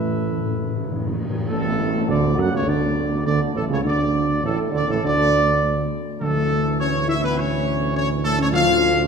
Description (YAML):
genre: classical, ceremonial fanfare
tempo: 103 BPM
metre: 4/4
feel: straight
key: unclear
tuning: A4 = 440 Hz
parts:
  - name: warm trumpet section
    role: melody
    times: 0.0-9.1 s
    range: A4 to F#5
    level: -23 LUFS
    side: equal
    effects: none
  - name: dark French horn section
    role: sustained chords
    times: 0.0-9.1 s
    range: A3 to F#4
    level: -26 LUFS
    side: left 3 dB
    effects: none
  - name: mellow trombone section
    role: sustained chords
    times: 0.0-9.1 s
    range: A2 to A3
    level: -27 LUFS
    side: right 5 dB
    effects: none
  - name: mellow tuba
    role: bass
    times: 0.0-9.1 s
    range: A1 to F#2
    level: -24 LUFS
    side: right 3 dB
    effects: none
  - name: timpani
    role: percussion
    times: 0.0-1.5, 6.2-9.1 s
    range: A2 to D3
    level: -27 LUFS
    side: left 2 dB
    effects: none
  - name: tam-tam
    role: percussion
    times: 1.5-3.8 s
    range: none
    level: -33 LUFS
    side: left 1 dB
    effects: none
room: wet scoring stage reverb, RT60 2.2 s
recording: minimal, uncompressed stereo recording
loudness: -18 LUFS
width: side -6 dB against mid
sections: 0.0-1.5 A section; 1.5-9.1 B section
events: timpani fill 0.0-1.5; band accent 1.5-2.1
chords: 0.0 Asus2; 1.5 D5/A; 6.2 A/D; 8.5 F/D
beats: 0.29 0.89 | 1.51 2.10 2.68 3.27 | 3.86 4.44 5.04 5.63 | 6.21 6.79 7.38 7.96 | 8.53